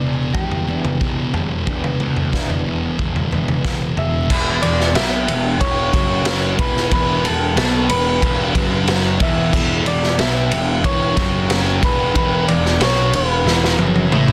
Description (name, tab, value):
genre	quiet-loud alternative rock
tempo	92 BPM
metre	4/4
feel	straight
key	E dorian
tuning	A4 = 440 Hz
part	electric guitar through a small old amp	melody	0.0-14.3 s	G4 to E5	-25 LUFS	equal	none
part	fingerpicked old ladder-braced acoustic guitar	arpeggios	0.0-4.3 s	E3 to D4	-33 LUFS	equal	digital delay
part	thick fuzz guitar	riff	0.0-14.3 s	E2 to B3	-25 LUFS	equal	distortion
part	fuzz picked electric bass	bass	0.0-14.3 s	E1 to D2	-25 LUFS	equal	overdrive
part	raw garage drum kit	drums	0.3-14.3 s	crash cymbal, kick drum, ride cymbal, snare drum, toms	-21 LUFS	equal	none
part	fuzz guitar	riff	4.3-14.3 s	E2 to B3	-28 LUFS	equal	distortion
room	light reverb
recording	dense, heavily limited modern master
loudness	-18 LUFS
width	mono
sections	0.0-4.3 A section; 4.3-14.3 B section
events	drum fill 13.5-14.3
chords	0.0 Em7; 4.3 E5